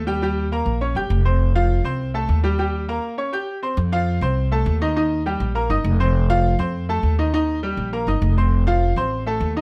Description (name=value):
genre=latin, salsa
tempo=202 BPM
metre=4/4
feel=straight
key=F major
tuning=A4 = 440 Hz
part: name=bright grand piano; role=accompaniment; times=0.0-9.6 s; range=Eb3 to G6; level=-25 LUFS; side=equal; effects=none
part: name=upright bass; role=bass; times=0.0-9.6 s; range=F1 to F2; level=-22 LUFS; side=equal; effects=none
room=little or no reverb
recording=none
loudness=-21 LUFS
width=mono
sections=0.0-3.8 A section; 3.8-9.6 A section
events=break 2.6-3.8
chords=0.2 Eb7; 1.4 F; 2.6 Eb7; 3.8 F; 5.0 Eb; 6.1 F; 7.3 Eb; 8.5 F